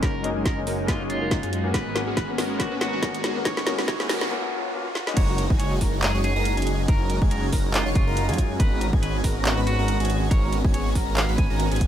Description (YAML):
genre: future bass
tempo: 140 BPM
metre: 4/4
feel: swing 56% on 16ths, half-time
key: F# major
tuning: A4 = 440 Hz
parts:
  - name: electric guitar at the edge of break-up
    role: melody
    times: 0.0-11.9 s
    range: E#4 to G#5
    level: -32 LUFS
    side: equal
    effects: sidechain pumping, ping-pong delay
  - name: clear baby grand piano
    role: accompaniment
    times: 0.0-5.2 s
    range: G#3 to F#4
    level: -31 LUFS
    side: left 6 dB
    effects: sidechain pumping, digital delay
  - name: ethereal airy pad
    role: sustained chords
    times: 0.0-4.3 s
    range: F#3 to A#5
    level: -38 LUFS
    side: left 1 dB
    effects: none
  - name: concert harp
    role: arpeggios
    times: 0.0-0.7 s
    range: none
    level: barely audible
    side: none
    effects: none
  - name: supersaw chords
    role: riff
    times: 0.0-11.9 s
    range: G#3 to C#5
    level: -28 LUFS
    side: equal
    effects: sidechain pumping, low-pass filter
  - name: wide detuned saw bass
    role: bass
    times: 0.0-11.9 s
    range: F#1 to F#2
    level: -27 LUFS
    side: equal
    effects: chorus, sidechain pumping
  - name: electronic kick drum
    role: drums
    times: 0.0-11.9 s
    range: none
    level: -22 LUFS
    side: equal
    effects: none
  - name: trap drum kit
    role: drums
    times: 0.0-11.9 s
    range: crash cymbal, handclaps, hi-hat, snare drum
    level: -28 LUFS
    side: equal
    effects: none
  - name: riser and noise sweep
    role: sound effects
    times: 1.8-5.2 s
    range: none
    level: -36 LUFS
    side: right 1 dB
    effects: none
  - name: airy dreamy lead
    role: arpeggios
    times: 5.2-11.9 s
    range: G#5 to C#6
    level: -34 LUFS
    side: equal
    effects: chorus, phaser, sidechain pumping, digital delay
room: light reverb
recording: high-pass filter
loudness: -21 LUFS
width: side -10 dB against mid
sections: 0.0-5.2 A section; 5.2-11.9 B section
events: build-up 0.0-5.2; drum fill 0.0-4.3, 5.0; filter sweep on supersaw synth 0.0-5.2; filter sweep 0.0-5.2; riser 1.8-5.2; noise sweep 3.5-5.2; break 4.3-5.2; drop 5.2-11.9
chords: 0.0 F#69; 1.7 G#m11; 5.2 F#69; 8.6 G#m11